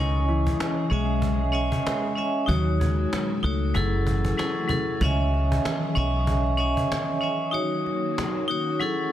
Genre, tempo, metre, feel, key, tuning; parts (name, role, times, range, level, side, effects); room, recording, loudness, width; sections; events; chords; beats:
hip hop, boom-bap hip-hop; 95 BPM; 4/4; swing 61% on 16ths; C# minor; A4 = 441 Hz
mellow electric guitar; melody; 0.0-3.9 s; E3 to D#5; -31 LUFS; left 4 dB; wide subtle chorus, high-pass filter, low-pass filter, ping-pong delay
vibraphone with hard mallets; accompaniment; 0.0-9.1 s; F#3 to G#5; -26 LUFS; equal; cassette tape, high-pass filter, low-pass filter
hollow soft pad; sustained chords; 0.0-9.1 s; A#2 to G#4; -33 LUFS; equal; ensemble chorus, high-pass filter, low-pass filter
deep dub fingered electric bass; bass; 0.0-6.7 s; F#1 to D#2; -24 LUFS; equal
cajon; drums; 0.3-8.9 s; -31 LUFS; equal
light reverb; dense, heavily limited modern master, vinyl crackle; -22 LUFS; side -12 dB against mid
0.0-9.1 A section
kick muted 7.5-9.1
0.0 C#madd9; 2.5 D#m7; 3.7 F#m9; 5.0 C#madd9; 7.5 D#m7
0.59 1.22 1.85 | 2.49 3.12 3.75 4.38 | 5.01 5.64 6.28 6.91 | 7.54 8.17 8.80